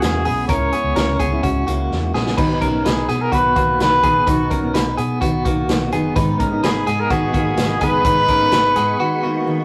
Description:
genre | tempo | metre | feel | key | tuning
jangly indie pop | 127 BPM | 4/4 | straight | B major | A4 = 441 Hz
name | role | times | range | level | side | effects
warm trumpet | melody | 0.0-9.5 s | F#4 to C#5 | -21 LUFS | equal | none
fingerpicked steel-string acoustic guitar | accompaniment | 0.0-9.6 s | G#2 to E4 | -25 LUFS | equal | none
clean electric guitar | arpeggios | 0.0-9.6 s | A#3 to B4 | -24 LUFS | equal | tremolo
vintage muted fingered electric bass | bass | 0.0-9.0 s | F#1 to B2 | -28 LUFS | equal | none
vintage drum kit | drums | 0.0-8.9 s | crash cymbal, hi-hat, kick drum, snare drum | -25 LUFS | equal | none
soft string machine | sustained chords | 6.2-9.6 s | G#4 to D#6 | -32 LUFS | equal | ensemble chorus
room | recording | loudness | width
moderate studio reverb, RT60 0.6 s | rough rehearsal-room recording | -18 LUFS | mono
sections
0.0-2.4 A section; 2.4-9.6 B section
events
drum fill 1.9-2.4; break 9.0-9.6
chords
0.0 C#m; 2.4 B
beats
0.02 | 0.49 0.96 1.44 1.91 | 2.38 2.85 3.33 3.80 | 4.27 4.75 5.22 5.69 | 6.16 6.64 7.11 7.58 | 8.05 8.53 9.00 9.47

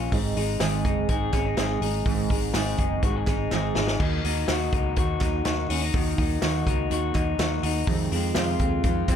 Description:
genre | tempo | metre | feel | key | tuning
jangly indie pop | 124 BPM | 4/4 | straight | Eb dorian | A4 = 438 Hz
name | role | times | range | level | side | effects
fingerpicked steel-string acoustic guitar | accompaniment | 0.0-9.2 s | F2 to Ab4 | -29 LUFS | right 9 dB | plate reverb
electric guitar through a small old amp | arpeggios | 0.0-9.2 s | F2 to Ab4 | -29 LUFS | left 9 dB | digital delay
vintage muted fingered electric bass | bass | 0.0-9.2 s | Gb1 to F2 | -29 LUFS | equal | none
vintage drum kit | drums | 0.1-9.2 s | crash cymbal, hi-hat, kick drum, snare drum | -27 LUFS | equal | none
group handclap | percussion | 0.6-9.2 s | none | -37 LUFS | right 6 dB | none
room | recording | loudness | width
light reverb | none | -22 LUFS | side -8 dB against mid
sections
0.0-9.2 A section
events
drum fill 3.5-4.0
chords
0.1 Ab; 4.0 Ebm; 7.9 Fm7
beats
| 0.12 0.60 1.09 1.57 | 2.06 2.54 3.03 3.51 | 4.00 4.48 4.97 5.45 | 5.94 6.42 6.91 7.39 | 7.88 8.36 8.85

